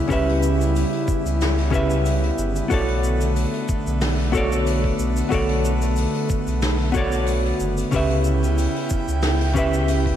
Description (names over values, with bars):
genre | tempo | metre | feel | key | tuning
sunset chillout | 92 BPM | 4/4 | swing 54% on 16ths | B minor | A4 = 440 Hz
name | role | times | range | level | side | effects
hollow-body jazz guitar | accompaniment | 0.0-10.2 s | C#3 to E5 | -24 LUFS | equal | auto-pan, tape echo, slapback echo
airy breathy pad | sustained chords | 0.0-10.2 s | C#3 to G5 | -25 LUFS | equal | chorus
warm sub bass | bass | 0.1-10.1 s | F#1 to C#2 | -22 LUFS | equal | none
electronic kick drum | drums | 0.1-10.2 s | none | -25 LUFS | equal | none
soft brush drum kit | drums | 0.1-10.2 s | hi-hat, shaker, snare drum | -31 LUFS | equal | none
room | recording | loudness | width
moderate lush hall reverb, RT60 2.7 s | big arena sound | -18 LUFS | side -10 dB against mid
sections
0.0-10.2 A section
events
none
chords
0.0 C#m7b5; 2.7 Bm9; 7.9 C#m7b5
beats
| 0.10 0.75 1.41 2.06 | 2.71 3.36 4.01 4.67 | 5.32 5.97 6.62 7.28 | 7.93 8.58 9.23 9.88